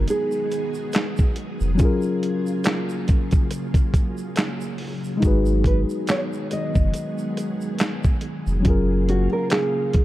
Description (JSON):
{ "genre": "lo-fi hip hop", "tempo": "70 BPM", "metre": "4/4", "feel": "swing 55% on 16ths", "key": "G# dorian", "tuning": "A4 = 439 Hz", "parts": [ { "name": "nylon-string guitar", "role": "melody", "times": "0.0-10.0 s", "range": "F#4 to D#5", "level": "-26 LUFS", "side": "right 2 dB", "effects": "none" }, { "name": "mellow reed electric piano", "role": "accompaniment", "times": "0.0-10.0 s", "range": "F#3 to B4", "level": "-26 LUFS", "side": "left 3 dB", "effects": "none" }, { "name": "string machine, full ensemble", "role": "sustained chords", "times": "0.0-10.0 s", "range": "C#3 to G#4", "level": "-30 LUFS", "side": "equal", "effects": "ensemble chorus" }, { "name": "warm sub bass", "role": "bass", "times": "0.0-9.3 s", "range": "E#1 to G#1", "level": "-22 LUFS", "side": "equal", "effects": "none" }, { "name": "dusty soul sampler-style drum kit", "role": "drums", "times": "0.1-10.0 s", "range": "handclaps, hi-hat, kick drum, snare drum", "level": "-21 LUFS", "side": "equal", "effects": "none" }, { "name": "tube shaker", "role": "percussion", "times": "0.1-8.6 s", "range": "none", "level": "-47 LUFS", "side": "right 6 dB", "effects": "none" } ], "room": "little or no reverb", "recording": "dark, warm production", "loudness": "-20 LUFS", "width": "side -15 dB against mid", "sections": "0.0-10.0 A section", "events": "none", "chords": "0.0 G#m7; 1.8 F#maj7; 5.2 G#m7; 8.7 F#maj7" }